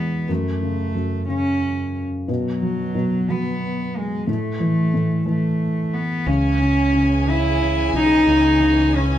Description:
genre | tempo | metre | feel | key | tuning
pop | 60 BPM (dotted quarters) | 6/8 | straight | unclear | A4 = 439 Hz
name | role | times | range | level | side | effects
warm cello | melody | 0.0-9.2 s | F#3 to E4 | -20 LUFS | equal | none
felt-muted upright piano | accompaniment | 0.0-9.2 s | E2 to G#3 | -23 LUFS | left 1 dB | none
dark studio string section | sustained chords | 6.3-9.2 s | E3 to G#5 | -28 LUFS | equal | none
fingered electric bass | bass | 6.3-9.2 s | B1 to C#2 | -21 LUFS | equal | none
room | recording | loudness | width
wet studio reverb, RT60 0.6 s | band playing live in one room | -18 LUFS | side -11 dB against mid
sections
0.0-6.3 A section; 6.3-9.2 B section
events
none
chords
0.3 F#m; 2.3 B5; 4.3 A5; 6.3 C#m

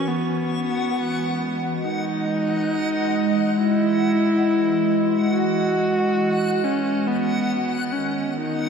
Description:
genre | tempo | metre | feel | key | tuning
ambient | free time | none | none | unclear | A4 = 442 Hz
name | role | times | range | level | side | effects
dark electric violin | melody | 0.0-8.7 s | B3 to F#4 | -23 LUFS | left 1 dB | ping-pong delay
warbly tape-like pad | sustained chords | 0.0-8.7 s | D#3 to D#5 | -23 LUFS | right 2 dB | chorus, built-in reverb, phaser
backwards swelling texture | texture | 0.0-8.7 s | F#5 | -31 LUFS | left 2 dB | built-in reverb
room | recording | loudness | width
wet huge ambient reverb, RT60 7.6 s | cassette tape | -19 LUFS | side -6 dB against mid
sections
0.1-8.7 A section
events
none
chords
0.0 Emaj9; 7.0 Badd9

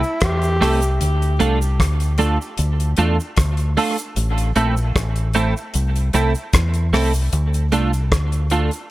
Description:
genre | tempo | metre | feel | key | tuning
dub reggae | 76 BPM | 4/4 | straight | A phrygian | A4 = 442 Hz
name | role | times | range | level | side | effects
breathy tenor saxophone | melody | 0.0-1.0 s | E4 to G4 | -25 LUFS | equal | dub echo
deep dub fingered electric bass | bass | 0.0-8.7 s | A1 to E2 | -18 LUFS | equal | none
cabasa | percussion | 0.0-8.9 s | none | -37 LUFS | right 7 dB | none
damped 70s drum kit | drums | 0.2-8.9 s | hi-hat, kick drum, rim click | -22 LUFS | left 1 dB | none
clean electric guitar | accompaniment | 0.6-8.7 s | A3 to A4 | -22 LUFS | right 3 dB | analog chorus, dub echo
room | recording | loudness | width
light reverb | none | -16 LUFS | side -17 dB against mid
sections
0.0-8.9 A section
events
none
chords
0.0 Am; 1.0 Dm; 4.2 Am; 7.3 Dm

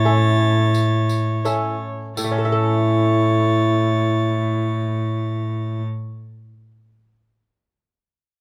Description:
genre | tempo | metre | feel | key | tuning
classical, renaissance-style consort dance | 83 BPM | 4/4 | straight | A major | A4 = 440 Hz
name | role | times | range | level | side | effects
rich violin | melody | 0.0-5.8 s | A6 | -35 LUFS | equal | none
warm viola | second line | 0.0-5.8 s | C#5 | -29 LUFS | equal | none
lute | accompaniment | 0.0-6.7 s | A2 to E5 | -29 LUFS | equal | none
mellow trombone | accompaniment | 0.0-5.8 s | E4 | -25 LUFS | equal | none
rich cello | bass | 0.0-5.8 s | A2 | -23 LUFS | equal | none
tambourine | percussion | 0.7-2.5 s | none | -35 LUFS | equal | none
room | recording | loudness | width
light reverb | close, detailed microphones | -20 LUFS | mono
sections
0.0-2.2 A section; 2.2-5.1 B section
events
slowing down 0.0-2.2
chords
0.0 A

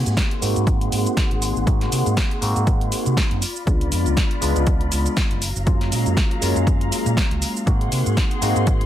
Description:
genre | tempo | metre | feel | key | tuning
filtered disco house | 120 BPM | 4/4 | swing 56% on 16ths | Ab mixolydian | A4 = 440 Hz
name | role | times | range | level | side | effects
bell-like tine electric piano | accompaniment | 0.0-8.9 s | Ab3 to Gb4 | -25 LUFS | equal | phaser, vintage 12-bit sampler grit, sidechain pumping, low-pass filter
rich chamber string section | sustained chords | 0.0-8.9 s | Gb3 to C6 | -30 LUFS | left 2 dB | sidechain pumping, low-pass filter
overdriven fingered electric bass | bass | 0.0-8.9 s | Gb1 to C3 | -22 LUFS | equal | sidechain pumping, low-pass filter
punchy analog drum machine | drums | 0.1-8.9 s | hi-hat, shaker, snare drum | -26 LUFS | equal | overdrive, sidechain pumping on hats, sidechain pumping on cymbals, sidechain pumping on perc
electronic kick drum | drums | 0.2-8.8 s | none | -20 LUFS | equal | overdrive
room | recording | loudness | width
little or no reverb | none | -18 LUFS | side -11 dB against mid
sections
0.0-8.9 A section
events
filter sweep 0.0-8.9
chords
0.0 Ab7; 3.4 Db7b9; 5.4 Gbmaj7; 7.7 Ab7

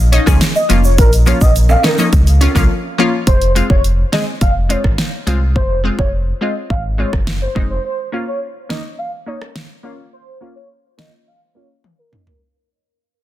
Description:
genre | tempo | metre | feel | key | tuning
dancehall | 105 BPM | 4/4 | straight | Bb minor | A4 = 441 Hz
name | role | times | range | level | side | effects
sub bass with octave | bass | 0.0-7.8 s | F1 to Db2 | -14 LUFS | equal | none
glassy wavetable pluck | accompaniment | 0.1-12.2 s | F3 to Ab4 | -18 LUFS | left 2 dB | chorus, low-pass filter
pop drum kit | drums | 0.1-12.4 s | hi-hat, kick drum, rim click, snare drum, toms | -16 LUFS | equal | none
egg shaker and timbales | percussion | 0.3-2.7 s | none | -25 LUFS | right 4 dB | none
warm velvety synth lead | melody | 0.6-12.4 s | Bb4 to F5 | -21 LUFS | equal | chorus, low-pass filter, ping-pong delay
room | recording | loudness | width
digital ambience | dense, heavily limited modern master | -12 LUFS | side -14 dB against mid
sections
0.0-3.3 A section; 3.3-12.4 B section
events
break 2.7-3.3; fade-out 3.3-12.4; filter sweep 3.3-12.4; drum fill 11.8-12.4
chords
0.0 Bbm; 3.3 Fm; 7.8 Bbm

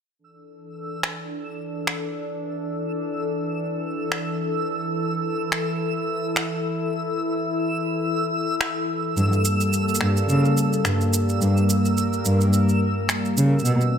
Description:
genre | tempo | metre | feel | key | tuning
folktronica | 107 BPM | 4/4 | swing 56% on 16ths | unclear | A4 = 441 Hz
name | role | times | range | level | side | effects
warbly tape-like pad | sustained chords | 0.7-14.0 s | D3 to B4 | -25 LUFS | left 1 dB | chorus, built-in reverb
backwards swelling texture | texture | 0.8-14.0 s | E6 | -31 LUFS | right 3 dB | built-in reverb
electronic finger snaps and shaker | drums | 1.0-13.9 s | none | -26 LUFS | right 1 dB | studio reverb
dark cello | bass | 9.2-13.8 s | G2 to C#3 | -20 LUFS | equal | none
room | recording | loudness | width
light reverb | none | -21 LUFS | side -8 dB against mid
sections
0.2-14.0 A section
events
none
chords
0.2 Dsus2; 9.2 Gmadd9

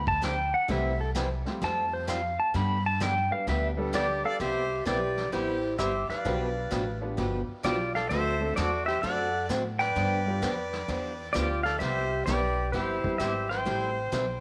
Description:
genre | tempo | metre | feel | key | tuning
country, western swing | 130 BPM | 4/4 | swing 66% on 8ths | C major | A4 = 436 Hz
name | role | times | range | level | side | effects
pedal steel guitar | melody | 0.0-14.4 s | E4 to B5 | -31 LUFS | equal | none
warm upright piano | accompaniment | 0.0-13.9 s | G3 to B4 | -39 LUFS | equal | none
upright bass | bass | 0.0-14.4 s | G1 to A2 | -35 LUFS | equal | none
vintage brush drum kit | drums | 0.1-14.4 s | brushed snare drum, hi-hat, kick drum, snare drum | -40 LUFS | equal | none
picked swing-style acoustic guitar | accompaniment | 0.2-14.2 s | B2 to B4 | -37 LUFS | equal | none
clear fiddle | second line | 3.9-14.4 s | G4 to D5 | -39 LUFS | equal | none
room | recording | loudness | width
moderate echo chamber reverb, RT60 2.4 s | none | -29 LUFS | mono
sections
0.0-4.4 A section; 4.4-14.4 B section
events
pedal steel guitar solo 0.0-4.4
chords
0.0 G7/D; 0.7 C6; 1.6 Fadd9; 2.5 G; 4.4 Cmaj7; 6.3 G7; 8.1 D7; 10.0 G7; 11.8 Cmaj7; 13.7 Am7

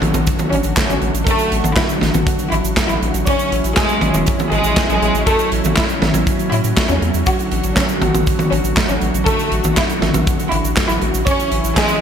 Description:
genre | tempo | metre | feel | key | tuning
italo disco | 120 BPM | 4/4 | straight | unclear | A4 = 442 Hz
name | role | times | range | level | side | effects
clear studio violin section | melody | 0.0-12.0 s | G#3 to C#5 | -20 LUFS | equal | digital delay
lush unison pad | sustained chords | 0.0-12.0 s | D3 to F#4 | -22 LUFS | equal | chorus
round analog bass | bass | 0.0-11.7 s | E1 to A2 | -21 LUFS | equal | tube saturation
big rock drum kit | drums | 0.0-12.0 s | cabasa, handclaps, hi-hat, snare drum, toms | -19 LUFS | right 1 dB | gated reverb
sub drop | sound effects | 0.0-1.3 s | none | barely audible | none | none
kick drum | drums | 0.3-11.9 s | none | -22 LUFS | equal | none
room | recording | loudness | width
moderate plate reverb, RT60 1.7 s, studio reverb | bright 1980s-style digital production | -14 LUFS | side -8 dB against mid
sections
0.0-12.0 A section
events
impact 0.0-1.3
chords
0.0 D/A; 3.3 A; 7.3 D/A; 11.3 A

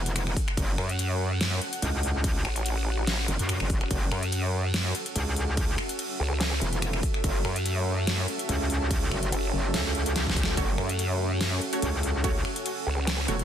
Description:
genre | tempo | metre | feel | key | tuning
heavy wobble dubstep | 144 BPM | 4/4 | swing 54% on 16ths, half-time | F# minor | A4 = 441 Hz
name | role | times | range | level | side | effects
metallic wobble bass | bass | 0.0-13.4 s | E1 to F#2 | -28 LUFS | equal | distortion, chorus, overdrive
granular cloud pad | texture | 0.0-13.4 s | C#4 to F#5 | -33 LUFS | right 1 dB | built-in reverb, sidechain pumping
dubstep drum kit | drums | 0.1-13.4 s | crash cymbal, finger snaps, hi-hat, snare drum | -31 LUFS | equal | overdrive
electronic kick drum | drums | 0.4-12.3 s | none | -29 LUFS | equal | overdrive
vowel-sweep wobble bass | bass | 0.8-13.3 s | E1 to F#2 | -27 LUFS | equal | chorus, overdrive
orchestra-hit-like synth stab | stabs | 10.6-13.4 s | A3 to C#5 | -34 LUFS | right 3 dB | built-in reverb, tape echo
room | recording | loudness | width
digital ambience | dense, heavily limited modern master | -25 LUFS | side -9 dB against mid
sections
0.0-13.4 A section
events
drum fill 10.2-10.6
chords
0.0 F#m

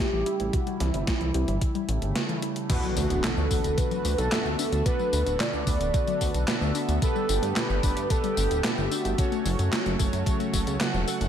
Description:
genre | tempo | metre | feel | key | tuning
synthwave | 111 BPM | 4/4 | straight | D major | A4 = 440 Hz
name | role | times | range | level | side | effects
warm velvety synth lead | melody | 0.0-9.5 s | E4 to D5 | -30 LUFS | equal | chorus, cassette tape, ping-pong delay
chorused pulse-width pad | sustained chords | 0.0-11.3 s | C3 to G4 | -33 LUFS | right 2 dB | sidechain pumping
warbly dusty pluck | arpeggios | 0.0-11.2 s | B2 to A4 | -35 LUFS | left 5 dB | chorus, digital delay
chorused synth bass | bass | 0.1-11.3 s | D1 to G2 | -27 LUFS | equal | sidechain pumping
gated 80s digital drum machine | drums | 0.3-11.3 s | crash cymbal, handclaps, hi-hat, snare drum, tambourine | -31 LUFS | equal | gated reverb, gated reverb snare, overdrive, small room ambience
electronic kick drum | drums | 0.5-10.6 s | none | -27 LUFS | equal | overdrive, small room ambience
analog synth brass | stabs | 2.7-11.3 s | A3 to F#5 | -33 LUFS | right 3 dB | chorus, digital delay
impact | sound effects | 2.7-4.9 s | none | -35 LUFS | equal | none
room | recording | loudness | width
light reverb, digital ambience | none | -23 LUFS | side -9 dB against mid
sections
0.0-2.7 A section; 2.7-11.3 B section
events
impact 2.7-4.9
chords
0.0 A7; 0.5 C; 1.6 A7; 2.7 D6; 7.0 Gadd9; 9.2 F#m

